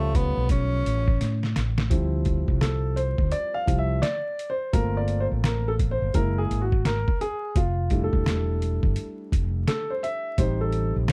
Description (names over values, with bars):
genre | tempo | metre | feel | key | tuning
hip hop, jazz-hop | 85 BPM | 4/4 | swing 63% on 16ths | D minor | A4 = 440 Hz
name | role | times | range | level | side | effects
breathy tenor saxophone | melody | 0.0-1.5 s | A3 to C#4 | -31 LUFS | equal | none
dark baby grand piano | accompaniment | 0.0-11.1 s | F3 to F5 | -31 LUFS | equal | none
mellow fretless electric bass | bass | 0.0-11.1 s | E1 to A2 | -28 LUFS | equal | ensemble chorus
trip hop sampler-style drum kit | drums | 0.1-11.1 s | hi-hat, kick drum, snare drum | -27 LUFS | equal | none
room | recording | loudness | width
digital ambience | dry, close 1970s-style studio recording, vinyl crackle | -25 LUFS | mono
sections
0.0-1.9 A section; 1.9-11.1 B section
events
drum fill 1.2-1.9; grand piano solo 1.9-11.1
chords
0.0 A7b13; 1.9 Dm11; 4.7 Gm11; 6.1 F#9; 7.6 Fmaj13; 10.4 Am7b5